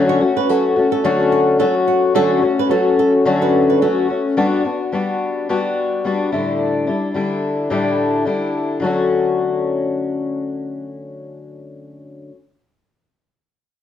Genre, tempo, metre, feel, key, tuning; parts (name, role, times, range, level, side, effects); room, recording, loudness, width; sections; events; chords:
acoustic pop; 108 BPM; 4/4; swing 55% on 16ths; D major; A4 = 440 Hz
fingerpicked twelve-string acoustic guitar; accompaniment; 0.0-12.4 s; A2 to F#4; -16 LUFS; left 3 dB
flamenco guitar; arpeggios; 0.1-4.2 s; F#4 to C#5; -22 LUFS; right 11 dB
moderate studio reverb, RT60 0.7 s; -15 LUFS; side -10 dB against mid
0.0-8.8 A section; 8.8-11.1 B section
0.0 Dmaj7; 4.4 Gmaj7; 6.3 A7sus4; 8.8 Dmaj7